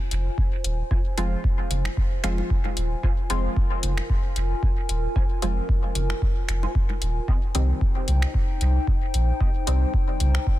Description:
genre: dub techno.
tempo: 113 BPM.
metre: 4/4.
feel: swing 55% on 16ths.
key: F minor.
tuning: A4 = 440 Hz.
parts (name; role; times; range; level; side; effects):
warbly tape-like pad; sustained chords; 0.0-10.6 s; Eb4 to Ab5; -33 LUFS; left 2 dB; chorus, built-in reverb, sidechain pumping.
filtered dub chord stab; stabs; 0.0-9.9 s; C3 to F4; -32 LUFS; equal; chorus, phaser, sidechain pumping, dub echo.
soft dub sub bass; bass; 0.1-10.4 s; Eb1 to C2; -23 LUFS; equal; sidechain pumping.
booming analog drum machine; drums; 0.1-10.4 s; finger snaps, hi-hat; -33 LUFS; left 1 dB; soft clipping on snare, dub echo.
electronic kick drum; drums; 0.4-10.6 s; none; -24 LUFS; equal; none.
filtered dub chord stab; riff; 0.9-9.8 s; C4 to Ab5; -40 LUFS; right 4 dB; ensemble chorus, cassette tape, sidechain pumping, dub echo.
congas and bongos; percussion; 1.7-10.4 s; none; -36 LUFS; right 2 dB; overdrive, sidechain pumping on perc, dub echo.
room: little or no reverb.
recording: dense, heavily limited modern master.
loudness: -21 LUFS.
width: side -15 dB against mid.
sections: 0.0-10.6 A section.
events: none.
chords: 0.0 Fm; 7.3 Cm.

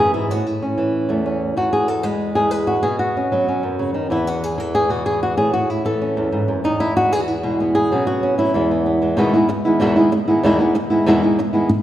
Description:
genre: flamenco.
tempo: 190 BPM.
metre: 4/4.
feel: straight.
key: E major.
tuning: A4 = 438 Hz.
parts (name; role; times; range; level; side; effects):
flamenco guitar; solo; 0.0-11.7 s; E2 to B4; -16 LUFS; equal; none.
room: wet scoring stage reverb, RT60 2.0 s.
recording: heard from further back in the room.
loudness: -16 LUFS.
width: side -12 dB against mid.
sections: 0.0-9.2 A section; 9.2-11.8 B section.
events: none.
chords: 0.3 A; 1.6 E; 2.8 Bsus2; 4.1 E5; 5.4 A; 6.6 E; 7.9 Bsus2; 8.5 E; 9.2 Emaj7.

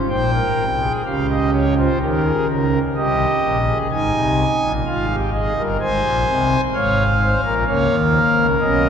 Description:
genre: classical, baroque-style 4-part fugue for pipe organ.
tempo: 64 BPM.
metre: 4/4.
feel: straight.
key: Bb minor.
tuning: A4 = 440 Hz.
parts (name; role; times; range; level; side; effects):
pipe organ, foundations; solo; 0.0-8.9 s; G1 to Ab5; -16 LUFS; equal; none.
room: wet cathedral reverb, RT60 7.2 s.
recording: none.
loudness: -16 LUFS.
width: side -7 dB against mid.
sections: 0.1-8.9 A section.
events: none.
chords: 0.1 Bbm; 2.0 Eb7; 3.9 Ab; 5.8 Dbmaj7/Ab; 7.7 A#m/C#.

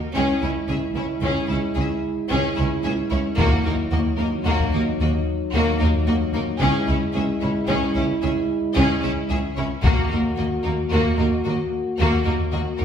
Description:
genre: cinematic, epic orchestral film score.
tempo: 74 BPM (dotted quarters).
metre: 12/8.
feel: straight.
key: Eb phrygian.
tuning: A4 = 435 Hz.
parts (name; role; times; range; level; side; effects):
bright symphonic violin section; second line; 0.1-12.8 s; Bb3 to Ab4; -29 LUFS; left 4 dB; none.
clear symphonic viola section; accompaniment; 0.1-12.8 s; Bb3 to Db4; -27 LUFS; left 1 dB; none.
rich symphonic cello section; bass; 0.1-12.8 s; Db2 to Eb2; -26 LUFS; right 1 dB; none.
rich symphonic violin section; melody; 0.2-12.8 s; Gb4 to Fb5; -31 LUFS; left 3 dB; none.
mellow French horn section; sustained chords; 0.2-12.8 s; Gb3 to Gb4; -26 LUFS; equal; none.
rich symphonic double bass section; bass; 0.2-12.8 s; Db2 to Eb2; -25 LUFS; right 1 dB; none.
taiko ensemble; drums; 3.4-4.8, 9.8-10.9 s; none; -23 LUFS; left 1 dB; none.
room: wet recital hall reverb, RT60 1.3 s.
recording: recorded in a church or concert hall.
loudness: -19 LUFS.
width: side -8 dB against mid.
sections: 0.0-12.8 A section.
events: build-up 0.0-12.8.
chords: 0.2 Dbm; 3.4 Ebm; 6.6 Dbm; 9.8 Ebm.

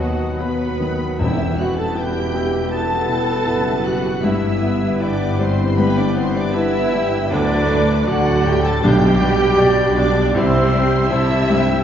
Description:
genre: classical, romantic movement for piano and orchestra.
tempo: 79 BPM.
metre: 4/4.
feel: rubato.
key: E minor.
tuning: A4 = 441 Hz.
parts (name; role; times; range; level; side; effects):
clear baby grand piano; melody; 0.0-11.8 s; B1 to D5; -22 LUFS; left 2 dB; none.
rich studio violin section; melody; 0.0-11.8 s; F#5 to A6; -32 LUFS; equal; none.
flute section; second line; 0.0-11.8 s; F#4 to A5; -29 LUFS; equal; none.
mellow clarinet; second line; 0.0-10.6 s; B3 to E4; -29 LUFS; equal; none.
mellow cor anglais; second line; 0.0-11.8 s; B4 to A5; -31 LUFS; equal; none.
rich chamber violin section; second line; 0.0-11.8 s; F#4 to A5; -29 LUFS; left 2 dB; none.
dark bassoon; accompaniment; 0.0-10.6 s; E3 to G3; -28 LUFS; right 1 dB; none.
rich studio viola section; accompaniment; 0.0-11.8 s; F#3 to A4; -24 LUFS; right 2 dB; none.
mellow French horn section; sustained chords; 0.0-11.8 s; A3 to A4; -25 LUFS; left 2 dB; none.
warm trombone section; sustained chords; 0.0-11.8 s; G2 to G3; -28 LUFS; right 2 dB; none.
mellow trumpet section; stabs; 0.0-11.8 s; B4 to E5; -28 LUFS; left 1 dB; none.
clear chamber double bass section; bass; 0.0-11.8 s; E1 to D#2; -24 LUFS; right 2 dB; none.
rich studio cello section; bass; 0.0-11.8 s; D#2 to D3; -26 LUFS; equal; none.
timpani; percussion; 1.2-2.3, 8.8-9.9 s; E2 to B2; -25 LUFS; left 1 dB; none.
room: wet concert hall reverb, RT60 1.9 s.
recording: heard from further back in the room, nothing above 7.5 kHz.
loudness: -15 LUFS.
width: side -9 dB against mid.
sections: 0.0-11.8 A section.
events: none.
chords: 0.0 B/D#; 1.2 Em; 4.3 Em/G; 7.3 D; 8.8 G/B; 10.4 C.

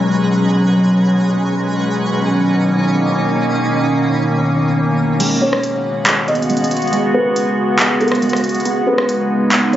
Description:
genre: hip hop, atmospheric cloud-rap.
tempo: 139 BPM.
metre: 4/4.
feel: half-time.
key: G# minor.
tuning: A4 = 437 Hz.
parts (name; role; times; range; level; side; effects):
glassy FM pad; sustained chords; 0.0-9.8 s; A#2 to F#4; -15 LUFS; equal; ensemble chorus, built-in reverb, low-pass filter.
twinkling granular texture; texture; 0.0-5.2 s; D#4 to B5; -25 LUFS; right 1 dB; built-in reverb.
glassy wavetable pluck; arpeggios; 5.2-9.8 s; G#3 to C#4; -24 LUFS; right 1 dB; chorus, digital delay.
trap drum kit; drums; 5.2-9.8 s; crash cymbal, handclaps, hi-hat, rim click; -18 LUFS; equal; none.
felt-muted upright piano; melody; 5.4-9.8 s; A#4 to D#5; -20 LUFS; equal; digital delay.
room: light reverb.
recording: recorded on a phone in the room, club reverb, compression, nothing above 7.7 kHz.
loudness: -13 LUFS.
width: side -12 dB against mid.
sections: 0.0-5.2 A section; 5.2-9.8 B section.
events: filter sweep on ambient pad 0.0-5.2; kick muted 5.2-9.8.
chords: 0.0 G#m11; 1.7 Bmaj9; 5.2 G#m7; 8.7 Badd9.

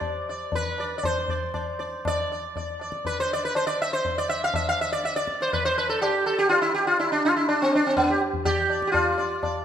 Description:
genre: indian classical, Hindustani.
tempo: 121 BPM.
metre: 4/4.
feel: straight.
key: D raga bageshri.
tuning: A4 = 440 Hz.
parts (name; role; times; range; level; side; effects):
sitar; melody; 0.0-9.6 s; B3 to F5; -23 LUFS; right 1 dB; none.
tabla; percussion; 0.0-9.6 s; none; -31 LUFS; left 3 dB; none.
room: wet recital hall reverb, RT60 1.5 s.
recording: minimal, uncompressed stereo recording.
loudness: -22 LUFS.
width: side -9 dB against mid.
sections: 0.0-9.6 A section.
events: speeding up 0.0-9.6.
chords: none.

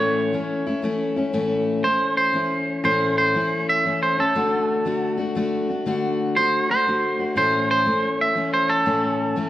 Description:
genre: country.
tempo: 120 BPM.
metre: 3/4.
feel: swing 66% on 8ths.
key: A major.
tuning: A4 = 442 Hz.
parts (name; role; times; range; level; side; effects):
twangy electric guitar; melody; 0.0-9.5 s; A4 to E5; -20 LUFS; right 2 dB; none.
picked steel-string acoustic guitar; accompaniment; 0.0-9.5 s; A2 to F#4; -23 LUFS; left 2 dB; none.
room: wet recital hall reverb, RT60 1.7 s.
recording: worn, warbling old tape, cassette tape, warbly pitch drift.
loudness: -19 LUFS.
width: side -14 dB against mid.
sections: 0.0-1.3 A section; 1.3-9.5 B section.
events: clean electric guitar solo 1.3-9.5.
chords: 0.0 A; 4.4 D; 7.4 A.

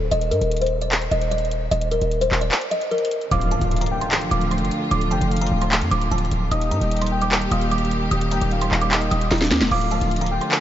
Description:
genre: hip hop, trap.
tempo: 150 BPM.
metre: 4/4.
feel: half-time.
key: D phrygian.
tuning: A4 = 440 Hz.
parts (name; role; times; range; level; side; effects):
hard-hitting 808-style bass; bass; 0.0-10.4 s; D1 to G2; -23 LUFS; equal; none.
kalimba; melody; 0.1-10.6 s; Bb4 to Eb6; -24 LUFS; equal; diffuse ambient delay.
trap drum kit; drums; 0.1-10.6 s; crash cymbal, handclaps, hi-hat, snare drum; -24 LUFS; equal; none.
soft octave-layered synth lead; second line; 3.3-10.6 s; Eb5 to G5; -28 LUFS; left 4 dB; chorus, diffuse ambient delay.
rich symphonic string section; sustained chords; 3.3-10.6 s; D3 to G4; -25 LUFS; right 1 dB; none.
impact; sound effects; 3.3-4.9 s; none; -29 LUFS; right 1 dB; none.
room: moderate huge ambient reverb, RT60 4.9 s.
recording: dreamy mix soaked in reverb, nothing above 7.6 kHz.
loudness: -18 LUFS.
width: side -11 dB against mid.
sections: 0.0-3.3 A section; 3.3-10.6 B section.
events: kick muted 2.5-3.3; impact 3.3-4.9; drum fill 9.3-9.7.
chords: 0.1 Eb5; 3.3 Dm; 6.5 Eb; 9.7 Dm.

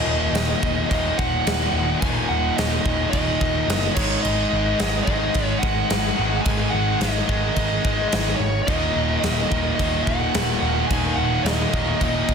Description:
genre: hard rock.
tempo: 108 BPM.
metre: 4/4.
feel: straight.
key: Eb minor.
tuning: A4 = 442 Hz.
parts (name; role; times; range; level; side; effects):
bluesy overdriven lead guitar; melody; 0.0-12.3 s; Db5 to Ab5; -25 LUFS; right 1 dB; distortion.
overdriven tonewheel organ; sustained chords; 0.0-12.3 s; Ab3 to Gb5; -36 LUFS; equal; none.
high-gain distorted guitar; riff; 0.0-12.3 s; Eb2 to Ab3; -27 LUFS; left 12 dB; distortion.
scooped high-gain guitar; riff; 0.0-12.3 s; Eb2 to Ab3; -27 LUFS; right 14 dB; distortion.
overdriven picked electric bass; bass; 0.1-12.3 s; Eb1 to Ab1; -26 LUFS; equal; none.
big rock drum kit; drums; 0.3-12.3 s; crash cymbal, kick drum, snare drum; -25 LUFS; equal; soft clipping on snare.
heavy high-gain guitar; riff; 8.7-12.3 s; Eb2 to Eb3; -30 LUFS; right 1 dB; none.
room: light reverb, studio reverb.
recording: dense, heavily limited modern master.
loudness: -19 LUFS.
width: side -6 dB against mid.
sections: 0.0-12.3 A section.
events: none.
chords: 0.0 Ebm; 4.0 Ab5; 8.7 Ebm.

